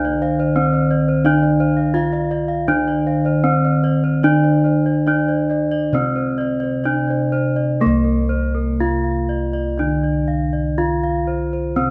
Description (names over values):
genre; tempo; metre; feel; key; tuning
Javanese gamelan; 61-87 BPM; 4/4; straight; unclear; A4 = 440 Hz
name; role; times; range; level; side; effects
gamelan-type bronze metallophone; melody; 0.0-11.9 s; Bb3-40c to F4-20c; -22 LUFS; equal; none
gamelan-type bronze metallophone; accompaniment; 0.0-11.9 s; C3 to Bb3-40c; -25 LUFS; equal; none
gamelan-type bossed gongs; arpeggios; 0.0-7.6 s; C5 to F5-20c; -29 LUFS; equal; none
gamelan-type bronze metallophone; arpeggios; 0.0-11.9 s; Bb4-40c to F5-20c; -29 LUFS; equal; none
gamelan-type bossed gongs; bass; 0.0-11.9 s; C2 to Bb4-40c; -25 LUFS; equal; none
room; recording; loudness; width
wet recital hall reverb, RT60 1.5 s; none; -18 LUFS; mono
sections
0.0-7.8 A section; 7.8-11.9 B section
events
none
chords
none